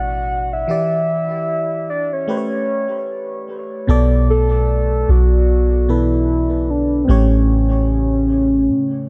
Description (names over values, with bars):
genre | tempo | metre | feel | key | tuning
R&B | 75 BPM | 4/4 | swing 58% on 16ths | unclear | A4 = 437 Hz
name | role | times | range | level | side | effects
soft octave-layered synth lead | melody | 0.0-9.1 s | C4 to F#5 | -21 LUFS | equal | chorus, phaser, tape echo
FM electric piano | accompaniment | 0.0-9.1 s | A2 to D5 | -24 LUFS | equal | chorus, tape echo
soft 808-style bass | bass | 0.0-9.1 s | A1 to C#3 | -19 LUFS | equal | none
room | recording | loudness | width
light reverb, digital ambience | echo-heavy mix | -17 LUFS | mono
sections
0.0-3.9 A section; 3.9-9.1 B section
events
FM electric piano fill 8.7-9.1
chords
0.0 Bm7; 0.7 Em7; 2.3 A9; 3.9 Bm7; 7.1 A7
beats
| 0.69 1.49 2.29 3.09 | 3.89 4.69 5.49 6.29 | 7.09 7.89 8.69